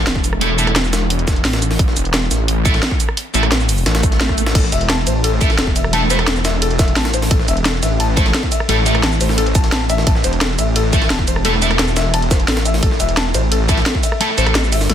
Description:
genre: dark technical drum and bass.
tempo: 174 BPM.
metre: 4/4.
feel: straight.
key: A minor.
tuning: A4 = 439 Hz.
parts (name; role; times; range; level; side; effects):
wide detuned saw bass; bass; 0.0-14.9 s; E1 to A1; -18 LUFS; equal; chorus, tube saturation, sidechain pumping.
breakbeat sampler-style drum kit; drums; 0.1-14.9 s; hi-hat, snare drum; -24 LUFS; equal; high-pass filter on snare, high-pass filter on hats, high-pass filter on room.
drum and bass drum kit; drums; 0.1-14.9 s; crash cymbal, hi-hat, ride cymbal, rim click, shaker, snare drum, toms; -20 LUFS; right 1 dB; none.
electronic kick drum; drums; 0.2-14.0 s; none; -17 LUFS; equal; overdrive.
thick fuzz guitar; stabs; 0.4-14.5 s; A3 to A4; -20 LUFS; right 1 dB; distortion, tape echo.
swell; sound effects; 4.0-4.6 s; none; -25 LUFS; right 3 dB; none.
felt-muted upright piano; arpeggios; 4.6-14.9 s; A4 to A5; -22 LUFS; left 6 dB; sidechain pumping, tape echo.
room: light reverb.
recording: dense, heavily limited modern master.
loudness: -13 LUFS.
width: side -10 dB against mid.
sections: 0.0-14.9 A section.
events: swell 4.0-4.6.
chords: 0.0 A5.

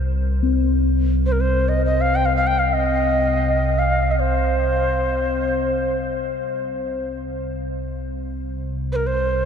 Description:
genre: world meditative, free-time meditation music.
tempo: free time.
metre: none.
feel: none.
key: C minor pentatonic.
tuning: A4 = 440 Hz.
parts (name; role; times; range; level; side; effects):
deep dark ambient pad; drone; 0.0-9.5 s; C2; -22 LUFS; equal; built-in reverb, lush chorus.
quartz singing bowl; texture; 0.4-8.0 s; C4; -27 LUFS; left 5 dB; none.
mellow reedy Native American-style cedar flute; melody; 1.3-9.4 s; Bb4 to G5; -22 LUFS; equal; tape echo.
room: wet huge ambient reverb, RT60 7.5 s.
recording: in a vast, echoing space, cassette tape.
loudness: -18 LUFS.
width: side -7 dB against mid.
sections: 0.0-7.7 A section; 7.7-9.5 A section.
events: none.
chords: none.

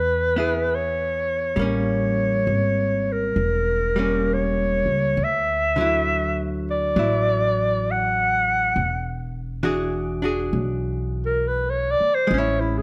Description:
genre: jazz ballad.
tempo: 67 BPM.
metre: 4/4.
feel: swing 66% on 8ths.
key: unclear.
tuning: A4 = 440 Hz.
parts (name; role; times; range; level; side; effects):
breathy clarinet; melody; 0.0-12.8 s; E4 to F#5; -24 LUFS; equal; none.
archtop guitar, miked and amplified; accompaniment; 0.0-12.8 s; D3 to G#4; -28 LUFS; equal; none.
upright bass; bass; 0.0-12.8 s; E1 to E2; -29 LUFS; equal; none.
room: moderate large studio reverb, RT60 1.4 s.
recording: none.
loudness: -22 LUFS.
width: mono.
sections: 0.0-12.8 A section.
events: clarinet solo 0.0-12.8.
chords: 0.0 C#m7; 1.6 A7b9; 5.2 Dadd9; 8.8 E9; 12.3 Amaj7.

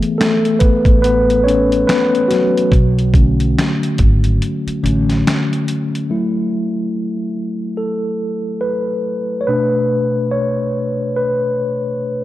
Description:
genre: lo-fi hip hop.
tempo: 71 BPM.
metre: 4/4.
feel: swing 60% on 16ths.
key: F# minor.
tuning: A4 = 442 Hz.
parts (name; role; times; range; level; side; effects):
mellow tine electric piano; accompaniment; 0.0-12.2 s; B2 to C#5; -16 LUFS; left 1 dB; medium stereo tremolo, cassette tape.
boom bap sampler-style drum kit; drums; 0.0-6.1 s; finger snaps, hi-hat, kick drum, snare drum; -16 LUFS; equal; none.
upright bass; bass; 0.9-5.2 s; G#1 to B1; -17 LUFS; equal; none.
room: moderate plate reverb, RT60 2.4 s.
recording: dark, warm production.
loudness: -14 LUFS.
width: side -15 dB against mid.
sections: 0.0-6.1 A section; 6.1-12.2 B section.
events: tine electric piano solo 0.0-6.1, 6.1-12.2.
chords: 0.0 F#m11; 2.7 Bm7; 6.1 F#m7; 9.5 Bm7.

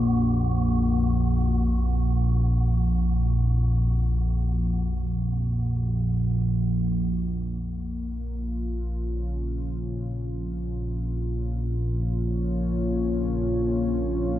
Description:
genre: dark ambient drone.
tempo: free time.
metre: none.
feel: none.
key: Bb minor.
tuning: A4 = 440 Hz.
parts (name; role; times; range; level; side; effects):
analog drone; drone; 0.0-14.4 s; Bb1 to F2; -23 LUFS; equal; chorus.
wind-like tuned noise texture; texture; 0.0-7.6 s; Gb4; -40 LUFS; right 5 dB; built-in reverb.
dark analog pad; sustained chords; 7.6-14.4 s; Bb3 to Db5; -30 LUFS; equal; chorus.
room: moderate huge ambient reverb, RT60 8.4 s.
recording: dark, warm production.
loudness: -23 LUFS.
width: side -13 dB against mid.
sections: 0.0-7.6 A section; 7.6-14.4 B section.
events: fade-out on synth texture 0.0-7.6; filter sweep on synth drone 0.0-7.6.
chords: 0.0 Gbmaj7/Bb; 7.6 Bbm.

